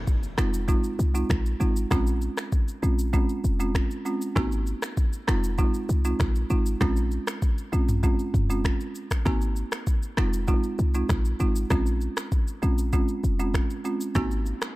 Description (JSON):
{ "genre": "afrobeats", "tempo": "98 BPM", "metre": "4/4", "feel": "straight", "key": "Bb minor", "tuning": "A4 = 440 Hz", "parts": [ { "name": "folk marimba with medium mallets", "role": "accompaniment", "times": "0.0-14.7 s", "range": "Ab3 to Gb4", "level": "-29 LUFS", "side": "right 2 dB", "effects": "none" }, { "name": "impact and riser", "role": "sound effects", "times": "0.0-1.9, 14.4-14.8 s", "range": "none", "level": "-42 LUFS", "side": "left 2 dB", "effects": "none" }, { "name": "afro-pop drum kit", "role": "drums", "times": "0.1-14.8 s", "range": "finger snaps, kick drum, rim click, shaker, toms", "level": "-26 LUFS", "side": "equal", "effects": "none" }, { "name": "short 808-style bass", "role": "bass", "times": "0.4-14.5 s", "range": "F1 to C2", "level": "-25 LUFS", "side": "equal", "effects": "none" } ], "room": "digital ambience", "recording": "dark, warm production", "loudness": "-23 LUFS", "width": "side -19 dB against mid", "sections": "0.0-14.8 A section", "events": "impact 0.0-1.9; riser 14.4-14.8", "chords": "0.4 Fm7; 1.9 Bbm7; 4.4 Ab7; 5.3 Fm7; 6.8 Bbm7; 9.3 Ab7; 10.2 Fm7; 11.7 Bbm7; 14.2 Ab7" }